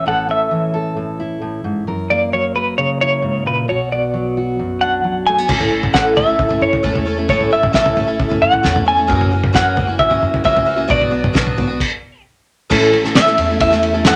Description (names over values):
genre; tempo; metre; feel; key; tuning
indie folk with a building arrangement; 133 BPM; 4/4; straight; A major; A4 = 440 Hz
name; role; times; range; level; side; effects
semi-hollow electric guitar; melody; 0.0-14.2 s; B4 to G#5; -18 LUFS; equal; tremolo
fingerpicked steel-string acoustic guitar; accompaniment; 0.0-5.5 s; F#2 to A#4; -23 LUFS; equal; none
upright bass; bass; 0.0-14.2 s; F#1 to A2; -28 LUFS; equal; none
picked twelve-string acoustic guitar; accompaniment; 5.5-14.2 s; F#2 to A4; -20 LUFS; equal; none
cloth-damped thuddy drum kit; drums; 5.5-14.2 s; crash cymbal, kick drum, ride cymbal, snare drum, toms; -20 LUFS; equal; none
room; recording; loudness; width
moderate club reverb, RT60 0.7 s; none; -16 LUFS; mono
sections
0.0-5.5 A section; 5.5-12.7 B section; 12.7-14.2 C section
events
stop 11.8-12.7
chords
0.0 A; 1.9 F#7; 3.7 Bm; 5.5 A; 9.1 F#7; 10.9 Bm; 12.7 A